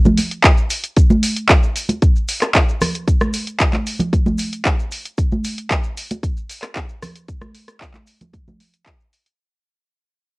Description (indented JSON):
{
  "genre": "nu-disco",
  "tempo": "114 BPM",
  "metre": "4/4",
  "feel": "straight",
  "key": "none",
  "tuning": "none",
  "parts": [
    { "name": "maracas and congas", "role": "percussion", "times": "0.1-9.4 s", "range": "none", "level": "-20 LUFS", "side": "right 1 dB", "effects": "none" },
    { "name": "pop drum kit", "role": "drums", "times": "0.2-9.4 s", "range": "handclaps, hi-hat, rim click", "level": "-19 LUFS", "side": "equal", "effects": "cassette tape" },
    { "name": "electronic kick drum", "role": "drums", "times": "0.4-9.0 s", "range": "none", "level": "-16 LUFS", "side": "equal", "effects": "cassette tape" }
  ],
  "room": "light reverb",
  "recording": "home recording on cassette",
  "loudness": "-15 LUFS",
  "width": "side -24 dB against mid",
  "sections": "0.0-9.4 A section",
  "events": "drop 0.0-9.4; fade-out 1.0-9.4",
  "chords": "none"
}